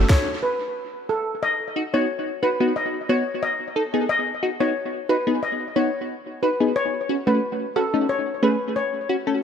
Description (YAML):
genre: dancehall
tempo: 90 BPM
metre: 4/4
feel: straight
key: unclear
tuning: A4 = 441 Hz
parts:
  - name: wavetable chord stab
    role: accompaniment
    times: 0.0-9.4 s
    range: A3 to A4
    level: -23 LUFS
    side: equal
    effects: tape echo
  - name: steel pan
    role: melody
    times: 0.1-9.2 s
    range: A4 to D#5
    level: -24 LUFS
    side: left 1 dB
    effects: tape echo
room: light reverb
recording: echo-heavy mix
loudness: -21 LUFS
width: side -8 dB against mid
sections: 0.0-1.4 A section; 1.4-9.4 B section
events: stop 0.1-1.4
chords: 0.0 N.C.; 1.4 B; 6.8 F#m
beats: 0.09 0.76 | 1.43 2.09 2.76 3.43 | 4.09 4.76 5.43 6.09 | 6.76 7.43 8.09 8.76